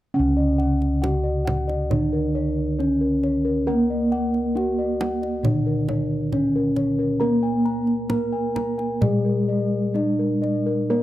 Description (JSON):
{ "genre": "Javanese gamelan", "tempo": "68 BPM", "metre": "4/4", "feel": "straight", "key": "unclear", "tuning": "A4 = 440 Hz", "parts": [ { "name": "gamelan-type bossed gongs", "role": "arpeggios", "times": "0.1-11.0 s", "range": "A#4+20c to A#5+20c", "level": "-30 LUFS", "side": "left 4 dB", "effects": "none" }, { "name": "gamelan-type bossed gongs", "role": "bass", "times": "0.1-11.0 s", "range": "C#2 to A#4+20c", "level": "-26 LUFS", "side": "left 1 dB", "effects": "none" }, { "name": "gamelan-type bronze metallophone", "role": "melody", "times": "0.2-11.0 s", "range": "A#3+20c to A#4+20c", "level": "-23 LUFS", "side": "equal", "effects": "none" }, { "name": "gamelan-type bronze metallophone", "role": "accompaniment", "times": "0.2-11.0 s", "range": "C#3 to A#3+20c", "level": "-26 LUFS", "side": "right 2 dB", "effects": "none" }, { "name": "kendang", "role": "percussion", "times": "0.6-10.6 s", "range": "none", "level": "-28 LUFS", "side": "right 3 dB", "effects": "none" } ], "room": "small room ambience", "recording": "dry, close 1970s-style studio recording", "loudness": "-20 LUFS", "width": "side -14 dB against mid", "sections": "0.1-11.0 A section", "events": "none", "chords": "none" }